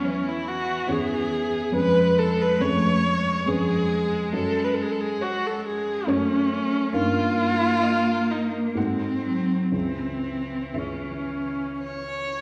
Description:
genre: classical, slow romantic movement for piano quartet.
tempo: 55-71 BPM.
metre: 3/4.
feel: rubato.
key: C# minor.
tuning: A4 = 441 Hz.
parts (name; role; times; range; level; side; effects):
rich violin; melody; 0.0-12.4 s; C#5 to F#5; -39 LUFS; equal; none.
clear cello; second line; 0.0-12.3 s; E3 to A#3; -31 LUFS; equal; none.
dark baby grand piano; accompaniment; 0.0-12.4 s; C#2 to B4; -30 LUFS; equal; none.
rich viola; accompaniment; 0.0-12.3 s; A#3 to C#5; -27 LUFS; equal; none.
room: wet recital hall reverb, RT60 1.7 s.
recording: heard from further back in the room, small room ambience.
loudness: -24 LUFS.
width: mono.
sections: 0.0-12.4 A section.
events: none.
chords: 0.0 C#m/E; 1.7 C#7/E#; 4.3 F#m; 6.9 D#7/G; 8.8 G#7b9; 9.7 C#m.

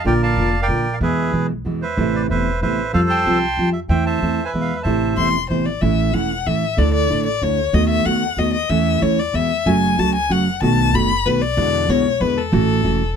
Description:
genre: tango.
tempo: 188 BPM.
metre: 3/4.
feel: rubato.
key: A minor, A major from 5.8 s.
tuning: A4 = 440 Hz.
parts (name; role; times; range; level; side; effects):
bandoneon; melody; 0.0-5.3 s; G#4 to C6; -21 LUFS; right 2 dB; none.
nylon-string guitar; accompaniment; 0.0-13.0 s; B2 to F#4; -19 LUFS; right 2 dB; none.
upright bass; bass; 0.0-13.1 s; E1 to F2; -23 LUFS; right 1 dB; none.
warm violin; second line; 5.2-13.2 s; A4 to C6; -20 LUFS; left 8 dB; none.
room: light reverb.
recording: close, detailed microphones.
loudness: -16 LUFS.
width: side -7 dB against mid.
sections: 0.0-5.8 A section; 5.8-13.2 B section.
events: violin solo 5.8-13.2.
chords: 0.1 Bb; 1.0 E; 2.0 Amadd9; 2.9 Fadd9; 3.9 Am/E; 4.5 E; 4.9 Amadd9; 5.8 A; 6.8 Dsus2; 7.7 B7/D#; 8.7 A/E; 9.3 E; 9.7 F#m; 10.6 B7; 11.6 E7; 12.5 A6.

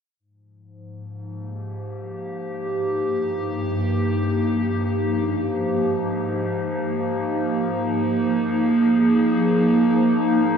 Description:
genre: ambient.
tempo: free time.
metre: none.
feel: none.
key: unclear.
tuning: A4 = 440 Hz.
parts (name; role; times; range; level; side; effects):
warbly tape-like pad; sustained chords; 0.9-10.6 s; G2 to Ab4; -20 LUFS; equal; chorus, built-in reverb, phaser.
room: wet huge ambient reverb, RT60 7.9 s.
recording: none.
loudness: -19 LUFS.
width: side -7 dB against mid.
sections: 0.2-10.6 A section.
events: fade-in on ambient pad 0.2-10.6.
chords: 0.2 Ab5; 2.7 Eb/G; 5.1 Ab5; 7.6 Bb5.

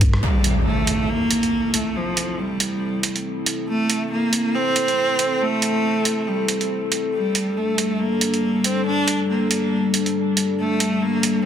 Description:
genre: deep dubstep.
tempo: 139 BPM.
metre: 4/4.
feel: swing 57% on 16ths, half-time.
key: A phrygian.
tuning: A4 = 439 Hz.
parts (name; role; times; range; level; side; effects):
dark analog pad; sustained chords; 0.0-11.5 s; G3 to Bb4; -24 LUFS; left 3 dB; chorus.
trip hop sampler-style drum kit; drums; 0.0-11.3 s; hi-hat, rim click; -23 LUFS; right 4 dB; soft clipping on snare.
clear cello; melody; 0.2-11.4 s; F3 to D4; -22 LUFS; right 2 dB; dub echo.
impact; sound effects; 0.2-2.0 s; none; -23 LUFS; equal; none.
room: moderate spring reverb, RT60 1.3 s.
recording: dense, heavily limited modern master.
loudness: -18 LUFS.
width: side -9 dB against mid.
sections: 0.2-11.5 A section.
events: impact 0.2-2.0.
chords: 0.2 Am; 7.1 Gm.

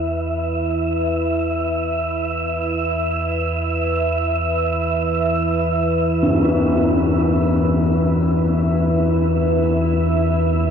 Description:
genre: dark ambient drone.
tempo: free time.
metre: none.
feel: none.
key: unclear.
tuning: A4 = 440 Hz.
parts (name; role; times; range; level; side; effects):
deep dark ambient pad; sustained chords; 0.0-10.7 s; E4 to E5; -22 LUFS; right 1 dB; chorus, built-in reverb, shimmer reverb.
deep rumbling drone; drone; 0.0-10.7 s; E2 to E3; -21 LUFS; left 1 dB; built-in reverb.
wind-like tuned noise texture; texture; 0.0-10.7 s; E5; -25 LUFS; right 2 dB; built-in reverb, shimmer reverb.
tam-tam; percussion; 6.2-6.4 s; none; -20 LUFS; left 2 dB; low-pass filter on cymbals.
room: wet cathedral reverb, RT60 6.0 s.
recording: dark, warm production.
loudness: -17 LUFS.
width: side -7 dB against mid.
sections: 0.0-10.7 A section.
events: none.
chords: 0.0 E5.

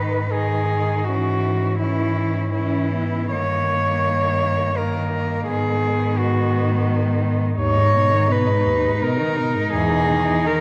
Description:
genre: classical, lyrical piece for cello ensemble.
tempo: 74-87 BPM.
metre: 3/4.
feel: rubato.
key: G# minor.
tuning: A4 = 440 Hz.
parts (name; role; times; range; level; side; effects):
rich cello; melody; 0.0-10.6 s; E4 to C#5; -24 LUFS; equal; none.
rich cello; second line; 0.0-10.6 s; A#3 to D#4; -29 LUFS; equal; none.
rich cello; accompaniment; 0.0-10.6 s; D#2 to E3; -28 LUFS; equal; none.
rich cello; bass; 0.0-10.3 s; E2 to G#2; -25 LUFS; equal; none.
room: wet concert hall reverb, RT60 2.0 s.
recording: worn, warbling old tape, cassette tape, warbly pitch drift.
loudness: -20 LUFS.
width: mono.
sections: 0.0-10.6 A section.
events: none.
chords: 0.0 G#m; 1.1 C#m/G#; 3.3 D#7/G; 5.5 G#m; 7.6 G#m/D#; 9.7 Emaj7.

